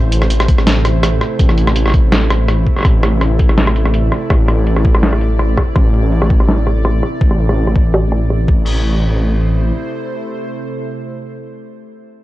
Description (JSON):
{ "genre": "half-time drum and bass", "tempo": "165 BPM", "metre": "4/4", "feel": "swing 54% on 16ths, half-time", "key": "A minor", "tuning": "A4 = 440 Hz", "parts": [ { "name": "bowed-like drone", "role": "sustained chords", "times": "0.0-11.7 s", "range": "C3 to D5", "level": "-22 LUFS", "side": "right 1 dB", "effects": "built-in reverb, sidechain pumping" }, { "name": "dark detuned saw bass", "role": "bass", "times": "0.0-9.7 s", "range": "A1", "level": "-14 LUFS", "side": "equal", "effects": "none" }, { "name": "boom bap sampler-style drum kit", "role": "drums", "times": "0.1-8.6 s", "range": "crash cymbal, hi-hat, rim click, snare drum", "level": "-18 LUFS", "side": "equal", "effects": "low-pass filter on snare, low-pass filter on hats, low-pass filter on cymbals" }, { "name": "electronic kick drum", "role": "drums", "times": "0.5-8.6 s", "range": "none", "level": "-13 LUFS", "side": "equal", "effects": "none" } ], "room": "little or no reverb", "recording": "dry, gritty hardware recording, cassette tape", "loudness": "-11 LUFS", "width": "side -16 dB against mid", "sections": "0.0-8.7 A section; 8.7-11.6 B section", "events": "filter sweep on drum 0.0-8.7", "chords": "0.0 Am" }